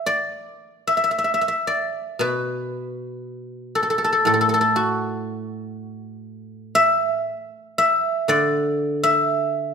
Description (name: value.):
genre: chinese traditional, Chinese solo plucked strings.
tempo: 55-62 BPM.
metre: 4/4.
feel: rubato.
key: D gong mode.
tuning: A4 = 440 Hz.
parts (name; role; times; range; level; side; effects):
guzheng; solo; 0.0-9.7 s; A2 to E5; -20 LUFS; equal; none.
room: wet recital hall reverb, RT60 1.5 s.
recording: minimal, uncompressed stereo recording.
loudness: -19 LUFS.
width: side -6 dB against mid.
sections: 0.1-9.7 A section.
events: none.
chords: none.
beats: | 0.06 1.14 2.21 3.25 | 4.28 5.28 6.28 7.30 | 8.31 9.29.